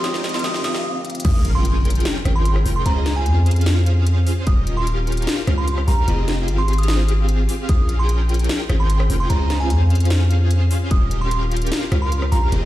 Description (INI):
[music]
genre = future bass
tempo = 149 BPM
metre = 4/4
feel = half-time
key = unclear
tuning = A4 = 439 Hz
[part]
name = glassy synth bell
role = melody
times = 0.0-12.5 s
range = Ab5 to Eb6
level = -28 LUFS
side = right 3 dB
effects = chorus, sidechain pumping, ping-pong delay
[part]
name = felt-muted upright piano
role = accompaniment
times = 0.0-1.3 s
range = F3 to G4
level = -29 LUFS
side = left 1 dB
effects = vintage 12-bit sampler grit, sidechain pumping, digital delay
[part]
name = airy breathy pad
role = sustained chords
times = 0.0-0.8 s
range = F3 to Eb5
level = -40 LUFS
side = left 2 dB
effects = none
[part]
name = big bright polysynth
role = riff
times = 0.0-12.7 s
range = C4 to G5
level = -26 LUFS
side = equal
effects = ensemble chorus, sidechain pumping, digital delay
[part]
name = trap drum kit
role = drums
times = 0.0-12.6 s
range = crash cymbal, hi-hat, rim click, snare drum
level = -27 LUFS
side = left 1 dB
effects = high-pass filter on snare, high-pass filter on hats, high-pass filter on cymbals
[part]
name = riser and impact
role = sound effects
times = 0.0-2.9 s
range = none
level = -27 LUFS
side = equal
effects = none
[part]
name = long sustained 808-style bass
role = bass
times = 1.2-12.7 s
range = Eb1 to F2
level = -17 LUFS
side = equal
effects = sidechain pumping
[part]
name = electronic kick drum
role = drums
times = 1.2-1.3, 4.5, 7.7-7.8, 10.9-11.0 s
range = none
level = -16 LUFS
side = equal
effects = overdrive
[sound]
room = little or no reverb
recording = played on a big sound system in a bare room, stone room reverb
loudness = -16 LUFS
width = side -15 dB against mid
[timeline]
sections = 0.0-1.2 A section; 1.2-12.7 B section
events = build-up 0.0-1.2; drum fill 0.0-0.8, 1.0; riser 0.0-0.8; filter sweep on synth bell 0.0-1.2; stop 0.8-1.2; drop 1.2-12.7; impact 1.2-2.9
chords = 0.0 Fm9; 1.2 Bbm7; 2.9 Dbmaj9; 4.5 Eb9; 6.1 Fm9; 7.7 Bbm7; 9.3 Dbmaj9; 10.9 Eb9